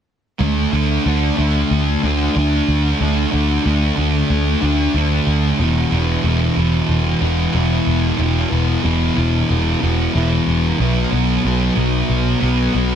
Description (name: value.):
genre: rock.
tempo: 92 BPM.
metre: 4/4.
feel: straight.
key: D major.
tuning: A4 = 440 Hz.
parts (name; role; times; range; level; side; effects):
thick fuzz guitar; riff; 0.4-13.0 s; E2 to D4; -17 LUFS; equal; distortion, wide subtle chorus.
vintage muted picked electric bass; bass; 0.4-13.0 s; E1 to D2; -18 LUFS; equal; none.
room: light reverb.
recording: dense, heavily limited modern master.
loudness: -15 LUFS.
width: side -8 dB against mid.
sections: 0.4-13.0 A section.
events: none.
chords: 0.4 D5; 5.6 E5; 10.8 B5.